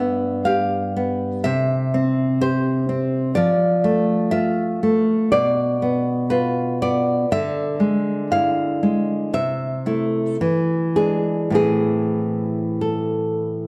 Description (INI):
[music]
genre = romantic piece for solo classical guitar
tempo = 48-64 BPM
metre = 4/4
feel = rubato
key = A minor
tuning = A4 = 441 Hz
[part]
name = nylon-string guitar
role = solo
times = 0.0-13.7 s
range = G2 to F5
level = -20 LUFS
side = equal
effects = none
[sound]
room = moderate recital hall reverb, RT60 1.4 s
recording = dark, warm production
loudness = -20 LUFS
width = mono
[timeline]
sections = 0.0-13.7 A section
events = none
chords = 0.0 G7; 1.5 C; 3.4 Fmaj7; 5.3 Bdim; 7.3 E7/D; 9.3 Am/C; 10.4 E7; 11.6 Am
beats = 0.47 1.46 2.42 | 3.37 4.34 5.33 6.31 | 7.29 8.29 9.33 10.40 | 11.56 12.81